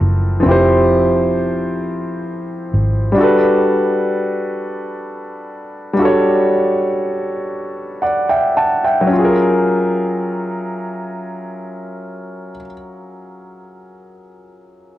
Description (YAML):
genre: slow six-eight R&B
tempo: 35-44 BPM (dotted quarters)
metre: 6/8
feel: straight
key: unclear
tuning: A4 = 441 Hz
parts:
  - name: clear grand piano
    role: accompaniment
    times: 0.0-15.0 s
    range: F3 to A5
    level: -15 LUFS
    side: equal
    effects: cassette tape
  - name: vintage muted fingered electric bass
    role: bass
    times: 0.0-3.1 s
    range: F1 to G#1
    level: -17 LUFS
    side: equal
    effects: none
room: moderate spring reverb, RT60 1.8 s, small room ambience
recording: home recording on cassette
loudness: -14 LUFS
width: side -14 dB against mid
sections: 0.0-9.1 A section; 9.1-12.5 B section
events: slowing down 3.2-9.1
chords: 0.0 Fmaj9; 3.2 Gmaj9; 9.1 F#maj9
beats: | 0.44 1.80 | 3.16 4.54 | 5.97 7.48 | 9.11 10.81